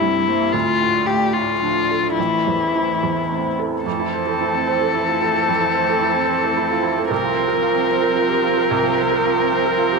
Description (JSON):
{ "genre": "neoclassical piano and strings", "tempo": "111 BPM", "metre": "3/4", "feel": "rubato", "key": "unclear", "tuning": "A4 = 440 Hz", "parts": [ { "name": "muted violin", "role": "melody", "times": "0.0-10.0 s", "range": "E4 to Bb4", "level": "-19 LUFS", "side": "left 8 dB", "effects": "none" }, { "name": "muted cello", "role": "second line", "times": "0.0-10.0 s", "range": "E3 to Bb3", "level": "-28 LUFS", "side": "right 7 dB", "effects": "none" }, { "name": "felt-muted upright piano", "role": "accompaniment", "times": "0.0-10.0 s", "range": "A1 to C5", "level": "-21 LUFS", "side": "right 10 dB", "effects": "none" }, { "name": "dark analog pad", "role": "sustained chords", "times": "0.0-10.0 s", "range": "A3 to E5", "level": "-29 LUFS", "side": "left 3 dB", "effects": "chorus" }, { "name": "muted viola", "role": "accompaniment", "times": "3.9-10.0 s", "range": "C4", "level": "-26 LUFS", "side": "right 9 dB", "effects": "none" } ], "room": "moderate echo chamber reverb, RT60 2.1 s", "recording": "1960s-style stereo with parts hard left and right", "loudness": "-16 LUFS", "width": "side -3 dB against mid", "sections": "0.0-3.9 A section; 3.9-10.0 B section", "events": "none", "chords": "0.0 C; 0.5 Dm; 2.2 Am; 3.9 Fmaj7; 7.1 C7sus4" }